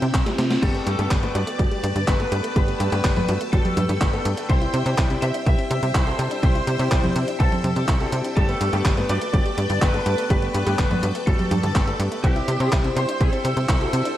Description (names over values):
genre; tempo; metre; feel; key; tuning
italo disco; 124 BPM; 4/4; straight; G major; A4 = 442 Hz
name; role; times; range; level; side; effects
lead guitar through a small cranked amp; melody; 0.0-14.2 s; G4 to E5; -28 LUFS; equal; overdrive, wide subtle chorus, tape echo
string machine, full ensemble; sustained chords; 0.0-14.2 s; C4 to E6; -30 LUFS; equal; ensemble chorus
analog pluck; arpeggios; 0.0-14.1 s; G2 to C5; -31 LUFS; right 1 dB; chorus, cassette tape, diffuse ambient delay
tight sequencer bass; bass; 0.0-14.0 s; G1 to C3; -24 LUFS; equal; none
gated 80s digital drum machine; drums; 0.0-14.2 s; congas, crash cymbal, handclaps, hi-hat, snare drum; -27 LUFS; right 1 dB; gated reverb, gated reverb snare, overdrive
electronic kick drum; drums; 0.1-13.8 s; none; -21 LUFS; equal; none
bright grand piano; stabs; 0.6-14.1 s; G3 to C5; -29 LUFS; left 3 dB; none
room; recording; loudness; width
moderate plate reverb, RT60 1.7 s; dreamy mix soaked in reverb, vinyl crackle; -19 LUFS; side -13 dB against mid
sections
0.6-14.2 A section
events
drum fill 0.3-0.6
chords
0.0 C; 0.6 Gadd9; 4.5 C; 8.4 Gadd9; 12.2 C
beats
0.14 | 0.63 1.11 1.59 2.08 | 2.56 3.04 3.53 4.01 | 4.50 4.98 5.46 5.95 | 6.43 6.92 7.40 7.88 | 8.37 8.85 9.34 9.82 | 10.30 10.79 11.27 11.76 | 12.24 12.72 13.21 13.69